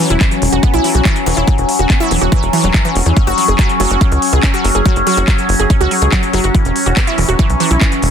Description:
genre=psychedelic trance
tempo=142 BPM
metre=4/4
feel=straight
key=unclear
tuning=A4 = 440 Hz
part: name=overtone-sweeping drone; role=sustained chords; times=0.0-8.1 s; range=F#3 to C#4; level=-16 LUFS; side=left 2 dB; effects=chorus, built-in reverb, phaser, sidechain pumping
part: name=wide unison pluck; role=riff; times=0.0-7.9 s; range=E3 to G#4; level=-18 LUFS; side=moving between left 3 dB and right 7 dB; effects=auto-pan, sidechain pumping, tape echo
part: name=drum and bass drum kit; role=drums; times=0.0-8.1 s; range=handclaps, hi-hat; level=-20 LUFS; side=left 1 dB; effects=none
part: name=tight sequencer bass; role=bass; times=0.1-8.1 s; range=E1 to E2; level=-15 LUFS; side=equal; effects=none
part: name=electronic kick drum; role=drums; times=0.2-7.9 s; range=none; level=-13 LUFS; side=equal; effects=none
room=light reverb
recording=dense, heavily limited modern master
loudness=-10 LUFS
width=side -8 dB against mid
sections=0.0-8.1 A section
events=none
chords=0.0 E5; 3.2 F#5; 6.5 E5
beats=0.21 0.63 1.05 | 1.48 1.90 2.32 2.74 | 3.17 3.59 4.01 4.43 | 4.86 5.28 5.70 6.12 | 6.55 6.97 7.39 7.81

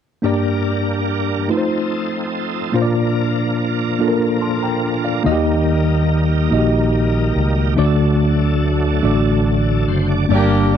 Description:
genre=slow gospel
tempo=48 BPM (dotted quarters)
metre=6/8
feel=straight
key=unclear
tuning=A4 = 439 Hz
part: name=tine electric piano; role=accompaniment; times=0.2-10.8 s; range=G2 to C6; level=-17 LUFS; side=left 1 dB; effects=overdrive, fast stereo tremolo
part: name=bright tonewheel organ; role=sustained chords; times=0.2-10.8 s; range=F3 to D5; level=-24 LUFS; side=right 2 dB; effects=slow rotary speaker, overdrive, chorus vibrato
part: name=fingered electric bass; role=bass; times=5.3-10.8 s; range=F#1 to Eb2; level=-18 LUFS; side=right 1 dB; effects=none
part: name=warm horn section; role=melody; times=10.3-10.8 s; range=Bb3 to G4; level=-18 LUFS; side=right 1 dB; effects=none
room=light reverb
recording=dry, close 1970s-style studio recording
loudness=-15 LUFS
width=side -9 dB against mid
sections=0.2-10.3 A section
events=none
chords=0.2 Gm; 1.5 F7; 2.8 Bb; 5.3 Eb; 7.8 D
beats=| 0.23 1.49 | 2.75 4.01 | 5.27 6.53 | 7.78 9.04 | 10.30

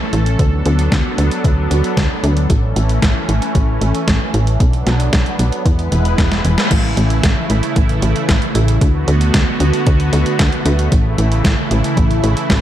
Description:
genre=synthwave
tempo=114 BPM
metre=4/4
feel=straight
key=A major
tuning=A4 = 440 Hz
part: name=lush unison pad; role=sustained chords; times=0.0-12.6 s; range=C#3 to B4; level=-20 LUFS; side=right 1 dB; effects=chorus, phaser, sidechain pumping
part: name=tight sequencer bass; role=bass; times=0.1-12.6 s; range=E1 to E2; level=-15 LUFS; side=equal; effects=tube saturation, sidechain pumping
part: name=clean 12-bit digital drum machine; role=drums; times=0.1-12.6 s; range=crash cymbal, hi-hat, snare drum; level=-21 LUFS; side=equal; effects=none
part: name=electronic kick drum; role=drums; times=0.4-12.6 s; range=none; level=-16 LUFS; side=equal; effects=none
room=light reverb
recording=dark, warm production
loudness=-12 LUFS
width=side -12 dB against mid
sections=0.0-6.7 A section; 6.7-12.6 B section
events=drum fill 6.3-6.7; band accent 6.6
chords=0.4 D6; 2.5 A; 4.6 Bm7; 5.7 E; 6.7 A; 8.8 D6; 10.9 A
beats=| 0.39 0.92 1.45 1.97 | 2.50 3.02 3.55 4.08 | 4.60 5.13 5.66 6.18 | 6.71 7.23 7.76 8.29 | 8.81 9.34 9.87 10.39 | 10.92 11.45 11.97 12.50

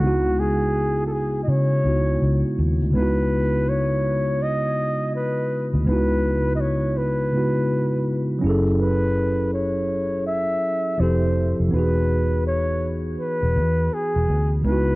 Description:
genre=lo-fi hip hop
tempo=82 BPM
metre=4/4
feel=swing 64% on 16ths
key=C# minor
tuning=A4 = 439 Hz
part: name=breathy flugelhorn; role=melody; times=0.0-15.0 s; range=F#4 to E5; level=-25 LUFS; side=equal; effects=low-pass filter
part: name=mellow tine electric piano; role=accompaniment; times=0.0-15.0 s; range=C#3 to A4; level=-23 LUFS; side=equal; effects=slow stereo tremolo, cassette tape, low-pass filter
part: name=vintage muted fingered electric bass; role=bass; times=0.0-15.0 s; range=E1 to C#3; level=-23 LUFS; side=equal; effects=none
room=light reverb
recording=worn, warbling old tape, cassette tape, warbly pitch drift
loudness=-19 LUFS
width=side -21 dB against mid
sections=0.0-2.9 A section; 2.9-15.0 B section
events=none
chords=0.0 C#m11; 8.4 F#m9; 11.0 Fmaj9; 11.7 Emaj9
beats=| 0.02 0.75 1.48 2.21 | 2.94 3.67 4.41 5.14 | 5.87 6.60 7.33 8.06 | 8.80 9.53 10.26 10.99 | 11.72 12.46 13.19 13.92 | 14.65

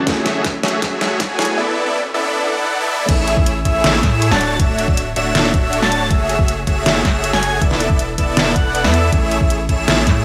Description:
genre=future bass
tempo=159 BPM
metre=4/4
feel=half-time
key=A major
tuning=A4 = 441 Hz
part: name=felt-muted upright piano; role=accompaniment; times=0.0-1.6 s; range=F#3 to G#4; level=-28 LUFS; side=equal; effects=sidechain pumping, digital delay
part: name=ethereal airy pad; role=sustained chords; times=0.0-1.6 s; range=E3 to G#4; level=-39 LUFS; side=equal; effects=none
part: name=supersaw chords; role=riff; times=0.0-10.2 s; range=A3 to A5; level=-21 LUFS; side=equal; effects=sidechain pumping, low-pass filter, digital delay
part: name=riser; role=sound effects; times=0.4-3.1 s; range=none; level=-32 LUFS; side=equal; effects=none
part: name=electronic kick drum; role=drums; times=0.1-10.1 s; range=none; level=-20 LUFS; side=equal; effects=overdrive
part: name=pop drum kit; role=drums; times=0.1-10.1 s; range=crash cymbal, hi-hat, snare drum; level=-21 LUFS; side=equal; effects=overdrive
part: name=airy dreamy lead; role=arpeggios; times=3.1-10.2 s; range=E5 to A5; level=-24 LUFS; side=equal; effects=chorus, phaser, sidechain pumping
part: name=saturated sub bass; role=bass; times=3.1-10.2 s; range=D1 to A2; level=-24 LUFS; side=equal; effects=sidechain pumping
room=light reverb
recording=high-pass filter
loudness=-16 LUFS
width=mono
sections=0.0-3.1 A section; 3.1-10.2 B section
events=build-up 0.0-3.1; drum fill 0.0-1.6; drop 3.1-10.2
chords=0.1 F#m9; 1.6 E7sus4; 3.1 Amaj7; 4.4 Dmaj9; 6.1 F#m9; 7.6 E7sus4; 9.1 Amaj7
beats=| 0.07 0.45 0.82 1.20 | 1.58 1.96 2.33 2.71 | 3.09 3.46 3.84 4.22 | 4.60 4.97 5.35 5.73 | 6.11 6.48 6.86 7.24 | 7.62 7.99 8.37 8.75 | 9.12 9.50 9.88

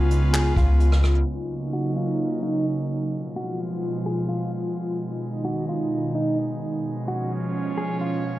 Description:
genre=hip hop, atmospheric cloud-rap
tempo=129 BPM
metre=4/4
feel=half-time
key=Eb minor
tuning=A4 = 440 Hz
part: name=airy breathy pad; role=sustained chords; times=0.0-8.4 s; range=Cb3 to F4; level=-25 LUFS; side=right 1 dB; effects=chorus, sidechain pumping
part: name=soft 808-style bass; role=bass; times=0.0-1.2 s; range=Db2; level=-19 LUFS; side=equal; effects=none
part: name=vintage brush drum kit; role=drums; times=0.1-1.3 s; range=handclaps, hi-hat, kick drum, rim click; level=-27 LUFS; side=equal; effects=none
part: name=mellow electric guitar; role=melody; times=0.3-8.2 s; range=Eb4 to Ab4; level=-32 LUFS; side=left 1 dB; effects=low-pass filter, tape echo
room=light reverb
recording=played on a big sound system in a bare room, stone room reverb, low-pass filter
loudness=-22 LUFS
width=side -15 dB against mid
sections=0.0-1.3 A section; 1.3-8.4 B section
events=filter sweep 1.3-8.4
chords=0.0 Db7; 1.3 Ebm7; 3.1 Fdim; 5.0 Abm; 6.8 Db7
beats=0.34 0.80 | 1.26 1.73 2.20 2.66 | 3.13 3.59 4.06 4.52 | 4.99 5.45 5.92 6.38 | 6.85 7.31 7.78 8.24

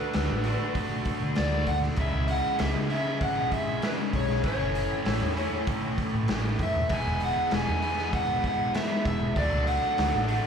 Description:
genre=blues rock power trio and southern rock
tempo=98 BPM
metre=4/4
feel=straight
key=unclear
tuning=A4 = 440 Hz
part: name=overdriven slide guitar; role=melody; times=0.0-10.5 s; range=B4 to G#5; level=-30 LUFS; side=left 1 dB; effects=none
part: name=cranked stack guitar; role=riff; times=0.0-10.5 s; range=A2 to F#4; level=-30 LUFS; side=right 1 dB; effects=overdrive, slapback echo
part: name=vintage muted fingered electric bass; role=bass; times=0.1-10.4 s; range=E1 to D3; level=-30 LUFS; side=equal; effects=none
part: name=raw garage drum kit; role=drums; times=0.1-10.4 s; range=hi-hat, kick drum, snare drum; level=-31 LUFS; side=equal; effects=none
part: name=bright tonewheel organ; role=sustained chords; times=6.9-10.5 s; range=A3 to E5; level=-40 LUFS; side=right 4 dB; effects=none
room=little or no reverb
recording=live gig heard through the venue's PA, club reverb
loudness=-24 LUFS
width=side -7 dB against mid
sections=0.0-10.5 A section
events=none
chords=0.0 D; 2.0 C#m; 4.4 A; 6.9 E; 9.4 D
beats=0.15 0.76 1.38 | 1.99 2.60 3.21 3.83 | 4.44 5.06 5.67 6.29 | 6.90 7.51 8.13 8.74 | 9.36 9.97

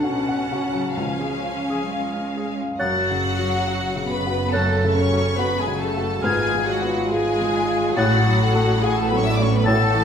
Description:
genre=classical, romantic movement for piano and orchestra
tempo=64-72 BPM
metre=4/4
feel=rubato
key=F# minor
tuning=A4 = 441 Hz
part: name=clear grand piano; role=melody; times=0.0-10.0 s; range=C#2 to F#5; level=-24 LUFS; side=left 2 dB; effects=none
part: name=rich studio violin section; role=melody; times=0.0-10.0 s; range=F#5 to E6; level=-29 LUFS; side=left 4 dB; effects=none
part: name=rich studio violin section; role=second line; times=0.0-10.0 s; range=F#4 to F#5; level=-29 LUFS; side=left 1 dB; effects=none
part: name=warm clarinet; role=second line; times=0.0-10.0 s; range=C#4 to E5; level=-29 LUFS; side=left 1 dB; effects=none
part: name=rich studio viola section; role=accompaniment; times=0.0-10.0 s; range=F#3 to E4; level=-29 LUFS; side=right 2 dB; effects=none
part: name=warm studio cello section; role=bass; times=0.0-10.0 s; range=F#2 to G#3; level=-29 LUFS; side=right 4 dB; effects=none
part: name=timpani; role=percussion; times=1.0-2.3 s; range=C#3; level=-36 LUFS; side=left 1 dB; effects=none
part: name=bright silver concert flute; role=second line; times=2.8-10.0 s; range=Ab6 to A6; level=-26 LUFS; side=left 4 dB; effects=none
part: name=warm cor anglais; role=second line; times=2.8-10.0 s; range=E5 to F#5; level=-30 LUFS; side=right 2 dB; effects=none
part: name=mellow bassoon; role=accompaniment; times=2.8-10.0 s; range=Cb4 to C#4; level=-30 LUFS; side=right 2 dB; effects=none
part: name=rich studio double bass section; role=bass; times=2.8-10.0 s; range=F#1 to A1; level=-28 LUFS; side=right 2 dB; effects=none
part: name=mellow French horn section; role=sustained chords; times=4.5-10.0 s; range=F4 to A4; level=-26 LUFS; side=equal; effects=none
room=wet recital hall reverb, RT60 1.5 s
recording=recorded in a church or concert hall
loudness=-19 LUFS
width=side -8 dB against mid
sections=0.0-2.8 A section; 2.8-10.0 B section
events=none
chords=0.0 F#m/C#; 1.0 C#; 2.8 F#m; 6.2 Fdim/Ab; 8.0 F#m/A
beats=0.04 0.96 1.89 | 2.80 3.66 4.53 5.38 | 6.24 7.11 7.97 8.83 | 9.66

